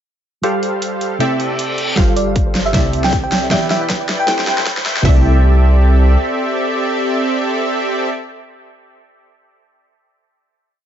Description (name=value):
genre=future bass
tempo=156 BPM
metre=4/4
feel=swing 56% on 16ths, half-time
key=C major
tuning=A4 = 440 Hz
part: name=soft round pluck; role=accompaniment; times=0.4-8.1 s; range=C3 to D5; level=-22 LUFS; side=right 2 dB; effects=analog chorus, sidechain pumping, dub echo
part: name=supersaw stab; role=riff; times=0.4-8.1 s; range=E3 to G5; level=-18 LUFS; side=right 1 dB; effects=sidechain pumping, low-pass filter, dub echo
part: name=big-room dance drum kit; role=drums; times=0.4-5.0 s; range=hi-hat, snare drum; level=-20 LUFS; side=equal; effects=none
part: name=reverse cymbal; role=sound effects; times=1.4-2.0 s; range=none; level=-23 LUFS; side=left 2 dB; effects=none
part: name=soft round pluck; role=arpeggios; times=2.0-5.2 s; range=A4 to G5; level=-31 LUFS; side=left 2 dB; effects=none
part: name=wide unison pluck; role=arpeggios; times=2.0-8.1 s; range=E5 to G5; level=-28 LUFS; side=equal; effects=sidechain pumping
part: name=saturated sub bass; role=bass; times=2.0-6.2 s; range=E1 to C2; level=-13 LUFS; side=equal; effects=sidechain pumping
part: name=big-room dance drum kit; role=drums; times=2.0-5.2 s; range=hi-hat, kick drum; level=-16 LUFS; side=equal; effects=none
part: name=bell-like FM electric piano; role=melody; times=2.2-4.6 s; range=D5 to G5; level=-21 LUFS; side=right 1 dB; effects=chorus, tremolo, sidechain pumping, dub echo
room=light reverb, digital ambience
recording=high-pass filter, nothing above 7.6 kHz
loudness=-13 LUFS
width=side -10 dB against mid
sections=0.4-2.0 intro; 2.0-5.1 build; 5.1-8.1 final chord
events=filter sweep on synth pluck 0.4-2.0; reverse cymbal 1.4-2.0; build-up 2.0-5.1; drum fill 2.0-5.1; filter sweep on supersaw synth 2.0-5.1; filter sweep 2.0-5.1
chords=0.4 G9sus4; 1.2 C69; 2.0 G9sus4; 2.7 C69; 3.5 Em7; 4.3 Am7; 5.1 C69